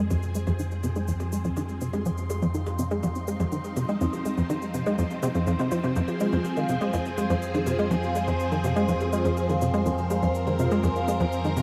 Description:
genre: ambient, sequencer-driven space music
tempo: 123 BPM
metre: 4/4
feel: straight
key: F minor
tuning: A4 = 441 Hz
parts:
  - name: phased string machine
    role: sustained chords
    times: 0.0-11.6 s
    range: F3 to Bb4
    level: -34 LUFS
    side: equal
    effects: ensemble chorus, phaser
  - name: plucky analog bass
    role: riff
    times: 0.0-11.6 s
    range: F2 to Ab3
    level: -29 LUFS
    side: equal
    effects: subtle chorus, cassette tape, tape echo
  - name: analog drone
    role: bass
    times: 0.0-11.6 s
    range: F2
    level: -34 LUFS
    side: equal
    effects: chorus
  - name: bubbling stepped-filter texture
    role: texture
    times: 0.1-11.6 s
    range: C6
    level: -44 LUFS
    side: equal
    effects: chorus, built-in reverb
  - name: percussion blips and cabasa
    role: percussion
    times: 0.1-11.6 s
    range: none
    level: -44 LUFS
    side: equal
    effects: overdrive, tape echo
  - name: vibraphone with medium mallets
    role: arpeggios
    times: 6.1-11.6 s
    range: F4 to Ab5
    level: -33 LUFS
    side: equal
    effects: tape echo
room: wet spring reverb, RT60 2.4 s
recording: echo-heavy mix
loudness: -26 LUFS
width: mono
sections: 0.0-11.6 A section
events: fade-in on string machine 0.0-11.6; fade-in on synth texture 0.0-11.6; filter sweep on analog synth bass 0.0-11.6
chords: 0.0 Fm

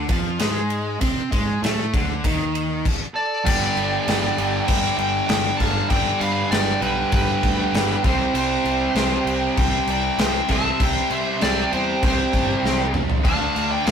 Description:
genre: hard rock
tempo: 98 BPM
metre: 4/4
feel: straight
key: unclear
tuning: A4 = 440 Hz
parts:
  - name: sludgy distorted guitar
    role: riff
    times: 0.0-13.9 s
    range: G2 to D4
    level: -27 LUFS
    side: right 4 dB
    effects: overdrive
  - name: tight distorted guitar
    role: riff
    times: 0.0-13.9 s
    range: G2 to D4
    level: -27 LUFS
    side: left 4 dB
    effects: distortion
  - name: fingered electric bass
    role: bass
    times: 0.0-13.9 s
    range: G1 to C3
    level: -28 LUFS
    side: equal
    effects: none
  - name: gated 80s drum kit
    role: drums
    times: 0.1-13.9 s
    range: crash cymbal, kick drum, ride cymbal, snare drum, toms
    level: -23 LUFS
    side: equal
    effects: none
  - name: octave-fuzz lead guitar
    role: second line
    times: 3.1-13.9 s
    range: G4 to F5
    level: -26 LUFS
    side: right 3 dB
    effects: distortion
  - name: smooth overdriven lead guitar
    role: melody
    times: 3.2-13.9 s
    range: B4 to A5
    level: -25 LUFS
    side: left 3 dB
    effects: none
  - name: high-gain distorted guitar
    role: riff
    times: 3.5-13.9 s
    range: G2 to D4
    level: -31 LUFS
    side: equal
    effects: none
room: moderate small room reverb, RT60 0.5 s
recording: rough rehearsal-room recording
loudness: -18 LUFS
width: side -7 dB against mid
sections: 0.0-3.5 A section; 3.5-13.9 B section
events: drum fill 12.6-13.3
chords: 0.0 Dm; 3.5 G; 8.0 C5; 13.3 Dm

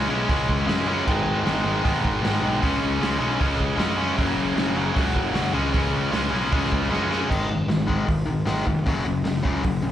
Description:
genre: punk rock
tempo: 154 BPM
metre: 4/4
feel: straight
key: G# minor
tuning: A4 = 440 Hz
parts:
  - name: distorted electric guitar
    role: riff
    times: 0.0-9.9 s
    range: F#2 to C#4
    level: -24 LUFS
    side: left 4 dB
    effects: overdrive, slapback echo
  - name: distorted electric guitar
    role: riff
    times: 0.0-7.3 s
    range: F#2 to E4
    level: -28 LUFS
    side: right 14 dB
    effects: overdrive, slapback echo
  - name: fuzz picked electric bass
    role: bass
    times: 0.0-9.9 s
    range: E#1 to F#2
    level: -28 LUFS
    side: right 1 dB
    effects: overdrive
  - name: raw garage drum kit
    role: drums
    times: 0.3-9.7 s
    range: crash cymbal, hi-hat, kick drum, snare drum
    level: -26 LUFS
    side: right 1 dB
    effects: none
room: little or no reverb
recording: live gig heard through the venue's PA, club reverb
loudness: -20 LUFS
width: side -11 dB against mid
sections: 0.0-7.3 A section; 7.3-9.9 B section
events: drum fill 6.9-7.3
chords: 0.0 C#m; 1.1 G#m; 2.6 C#m; 4.2 F#; 5.5 C#m; 7.3 G#5; 8.9 F#5

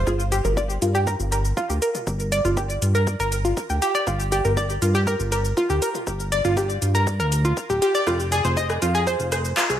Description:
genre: melodic techno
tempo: 120 BPM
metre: 4/4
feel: straight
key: G phrygian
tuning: A4 = 440 Hz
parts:
  - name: analog pluck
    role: arpeggios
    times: 0.0-9.8 s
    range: F4 to Eb5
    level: -22 LUFS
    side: equal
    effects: chorus, sidechain pumping, diffuse ambient delay
  - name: fat analog bass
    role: bass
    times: 0.0-9.8 s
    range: D1 to G2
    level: -23 LUFS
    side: equal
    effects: sidechain pumping
  - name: deep house drum kit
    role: drums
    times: 0.1-9.8 s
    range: handclaps, hi-hat, rim click, shaker, toms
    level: -29 LUFS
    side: left 1 dB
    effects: overdrive, high-pass filter on perc, high-pass filter on hats, high-pass filter on toms, high-pass filter on snare
  - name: electronic kick drum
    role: drums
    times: 0.1-9.7 s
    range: none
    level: -31 LUFS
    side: equal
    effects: overdrive, high-pass filter on kick
room: moderate plate reverb, RT60 1.3 s, digital ambience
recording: dreamy mix soaked in reverb, high-pass filter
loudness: -20 LUFS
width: side -10 dB against mid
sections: 0.1-9.8 A section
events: build-up 0.1-9.8; filter sweep 0.1-9.8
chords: 0.1 Gm7; 8.1 Fm

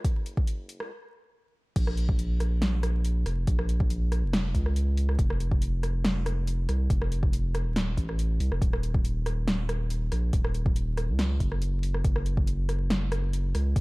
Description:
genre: deep dubstep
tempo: 140 BPM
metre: 4/4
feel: half-time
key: Bb harmonic minor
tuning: A4 = 439 Hz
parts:
  - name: saturated sub bass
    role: bass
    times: 0.0-13.8 s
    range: Eb1 to Db2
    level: -27 LUFS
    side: equal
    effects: high-pass filter
  - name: deep house drum kit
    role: drums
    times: 0.0-13.8 s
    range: crash cymbal, hi-hat, rim click, snare drum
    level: -33 LUFS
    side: equal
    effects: overdrive
  - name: electronic kick drum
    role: drums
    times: 0.0-13.8 s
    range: none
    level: -26 LUFS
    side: equal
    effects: overdrive
room: little or no reverb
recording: vinyl crackle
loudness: -25 LUFS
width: side -24 dB against mid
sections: 0.0-1.8 A section; 1.8-13.8 B section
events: build-up 0.0-1.8; stop 0.9-1.8; drop 1.8-13.8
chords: none

